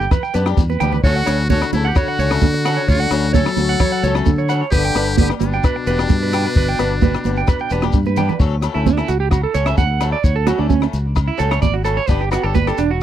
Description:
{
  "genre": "highlife guitar band",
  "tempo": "130 BPM",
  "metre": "4/4",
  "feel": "straight",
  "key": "D major",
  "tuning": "A4 = 441 Hz",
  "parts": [
    { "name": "trumpet with metal mute", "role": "melody", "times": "0.0-7.9 s", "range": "D4 to A4", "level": "-23 LUFS", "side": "left 1 dB", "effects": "none" },
    { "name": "breathy trombone", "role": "second line", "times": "0.0-7.9 s", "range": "B2 to F#3", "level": "-25 LUFS", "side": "left 10 dB", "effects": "none" },
    { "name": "picked swing-style acoustic guitar", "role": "accompaniment", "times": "0.0-12.8 s", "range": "F#3 to A4", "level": "-26 LUFS", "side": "left 8 dB", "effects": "none" },
    { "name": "clean electric guitar", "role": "arpeggios", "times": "0.0-13.0 s", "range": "C#4 to G5", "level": "-22 LUFS", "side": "right 8 dB", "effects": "harmonic tremolo" },
    { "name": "fingered electric bass", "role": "bass", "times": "0.0-13.0 s", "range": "E1 to D3", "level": "-19 LUFS", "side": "equal", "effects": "none" },
    { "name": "shekere", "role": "percussion", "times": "0.0-12.9 s", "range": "none", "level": "-26 LUFS", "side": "left 2 dB", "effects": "none" },
    { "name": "compact cocktail drum kit", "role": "drums", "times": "0.1-12.9 s", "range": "hi-hat, kick drum, rim click", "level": "-18 LUFS", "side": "equal", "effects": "none" },
    { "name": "agogo bells", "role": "percussion", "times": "0.1-12.8 s", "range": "none", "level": "-31 LUFS", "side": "left 18 dB", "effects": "none" },
    { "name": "congas", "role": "percussion", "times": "0.1-12.8 s", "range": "none", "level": "-23 LUFS", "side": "right 14 dB", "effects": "none" }
  ],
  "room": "little or no reverb",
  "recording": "dry, close 1970s-style studio recording",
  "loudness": "-14 LUFS",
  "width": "side -11 dB against mid",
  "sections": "0.0-8.4 A section; 8.4-13.0 B section",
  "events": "drum fill 0.7-1.0, 7.8-8.4; clean electric guitar solo 8.4-13.0",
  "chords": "0.0 G; 1.0 Dmaj7; 4.7 G; 8.4 Dmaj7; 12.1 G"
}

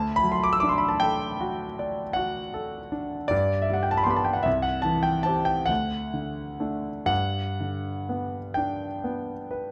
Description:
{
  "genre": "classical, romantic nocturne for solo piano",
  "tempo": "39-53 BPM (dotted quarters)",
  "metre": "9/8",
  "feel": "rubato",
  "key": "G major",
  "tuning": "A4 = 438 Hz",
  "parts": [
    { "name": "clear concert grand piano", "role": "solo", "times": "0.0-9.7 s", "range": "C2 to E6", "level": "-26 LUFS", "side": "equal", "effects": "none" }
  ],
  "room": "light reverb",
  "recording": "close, detailed microphones",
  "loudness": "-27 LUFS",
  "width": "mono",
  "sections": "0.0-9.7 A section",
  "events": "none",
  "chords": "0.0 D; 3.3 G; 4.5 C; 5.7 D; 7.1 G"
}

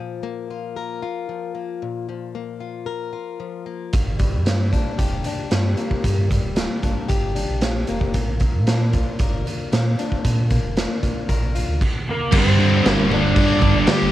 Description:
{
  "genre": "quiet-loud alternative rock",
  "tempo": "114 BPM",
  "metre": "4/4",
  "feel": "straight",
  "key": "unclear",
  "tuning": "A4 = 440 Hz",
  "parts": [
    { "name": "picked plugged-in swing-style acoustic guitar", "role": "arpeggios", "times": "0.0-11.8 s", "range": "G2 to Bb4", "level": "-29 LUFS", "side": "left 7 dB", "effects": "cassette tape" },
    { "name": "sub bass with octave", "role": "bass", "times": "3.9-14.1 s", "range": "D1 to Bb2", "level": "-22 LUFS", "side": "equal", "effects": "none" },
    { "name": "raw garage drum kit", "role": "drums", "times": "3.9-14.0 s", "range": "crash cymbal, hi-hat, kick drum, snare drum", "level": "-21 LUFS", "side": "right 1 dB", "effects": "none" },
    { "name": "lead guitar through a small cranked amp", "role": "melody", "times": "12.1-14.1 s", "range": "Bb3 to G5", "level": "-22 LUFS", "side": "equal", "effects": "overdrive, cassette tape" },
    { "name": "tonewheel organ", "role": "sustained chords", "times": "12.3-14.1 s", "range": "D3 to G4", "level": "-31 LUFS", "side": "right 1 dB", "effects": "none" },
    { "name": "high-gain distorted guitar", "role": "riff", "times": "12.3-14.1 s", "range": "G2 to G3", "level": "-25 LUFS", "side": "left 1 dB", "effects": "none" },
    { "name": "thick fuzz guitar", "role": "riff", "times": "12.3-14.1 s", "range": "G2 to G3", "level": "-22 LUFS", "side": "left 6 dB", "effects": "distortion, cassette tape" },
    { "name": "thick fuzz guitar", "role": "riff", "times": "12.3-14.1 s", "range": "G2 to G3", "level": "-21 LUFS", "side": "right 8 dB", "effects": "distortion, cassette tape" }
  ],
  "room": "light reverb",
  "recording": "home recording on cassette",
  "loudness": "-18 LUFS",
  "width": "side -14 dB against mid",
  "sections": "0.0-12.3 A section; 12.3-14.1 B section",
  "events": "none",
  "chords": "0.0 Bb5; 3.9 Gm; 8.1 Bb; 12.3 Gm"
}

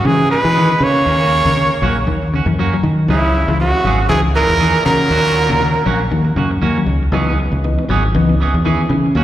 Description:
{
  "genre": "afrobeat",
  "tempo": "119 BPM",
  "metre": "4/4",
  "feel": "swing 56% on 16ths",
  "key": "C# dorian",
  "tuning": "A4 = 440 Hz",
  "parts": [
    { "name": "warm trumpet", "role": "melody", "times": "0.0-6.3 s", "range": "E4 to C#5", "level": "-16 LUFS", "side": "right 2 dB", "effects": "slapback echo" },
    { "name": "raspy tenor saxophone", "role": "second line", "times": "0.0-6.3 s", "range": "C#3 to A#3", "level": "-24 LUFS", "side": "right 2 dB", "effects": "slapback echo" },
    { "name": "warm baritone saxophone", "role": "second line", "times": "0.0-6.3 s", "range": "E2 to C#3", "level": "-27 LUFS", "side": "left 3 dB", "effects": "slapback echo" },
    { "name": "fingered electric bass", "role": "bass", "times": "0.0-9.2 s", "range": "G#1 to E3", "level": "-16 LUFS", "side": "equal", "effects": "none" },
    { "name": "clean electric guitar", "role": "arpeggios", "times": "0.1-9.1 s", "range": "C#3 to F#3", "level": "-21 LUFS", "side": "left 4 dB", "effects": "vibrato effect, slapback echo" },
    { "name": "clean electric guitar", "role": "stabs", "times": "0.2-9.2 s", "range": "E3 to G#4", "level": "-23 LUFS", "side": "right 6 dB", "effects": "slapback echo" },
    { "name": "mellow tonewheel organ", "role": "accompaniment", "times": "7.1-9.2 s", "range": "E3 to E4", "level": "-22 LUFS", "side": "left 1 dB", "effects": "slow rotary speaker, slapback echo" }
  ],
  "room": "light reverb, small room ambience",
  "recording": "live gig heard through the venue's PA, recital hall reverb",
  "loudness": "-12 LUFS",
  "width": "side -12 dB against mid",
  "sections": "0.0-9.2 A section",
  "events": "none",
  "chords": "0.0 C#m7; 1.1 D#m7; 3.1 C#m7; 5.1 D#m7; 7.1 C#m7"
}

